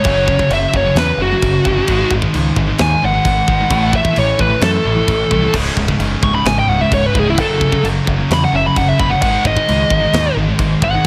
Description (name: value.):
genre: heavy metal.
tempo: 131 BPM.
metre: 4/4.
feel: straight.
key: unclear.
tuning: A4 = 439 Hz.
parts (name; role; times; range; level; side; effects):
high-gain lead guitar; melody; 0.0-11.1 s; E4 to C#6; -19 LUFS; equal; distortion, tape echo.
heavy high-gain guitar; riff; 0.0-11.1 s; C#2 to A3; -26 LUFS; equal; distortion.
high-gain distorted guitar; riff; 0.0-11.1 s; C#2 to A3; -23 LUFS; equal; distortion.
scooped high-gain guitar; riff; 0.0-11.1 s; C#2 to A3; -24 LUFS; equal; none.
growling picked electric bass; bass; 0.0-11.0 s; C#1 to F#2; -21 LUFS; equal; overdrive.
tight metal drum kit; drums; 0.0-11.1 s; china cymbal, crash cymbal, kick drum, snare drum; -23 LUFS; equal; none.
room: light reverb.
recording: none.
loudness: -14 LUFS.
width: mono.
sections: 0.0-11.1 A section.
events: lead electric guitar solo 0.0-11.1.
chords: 0.1 F#5; 1.9 G#5; 3.7 A5; 5.5 C#5; 7.4 F#m; 9.2 G#5.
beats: | 0.06 0.51 0.97 1.42 | 1.88 2.34 2.79 3.25 | 3.71 4.17 4.62 5.08 | 5.54 6.00 6.46 6.91 | 7.37 7.83 8.29 8.75 | 9.21 9.67 10.12 10.58 | 11.04.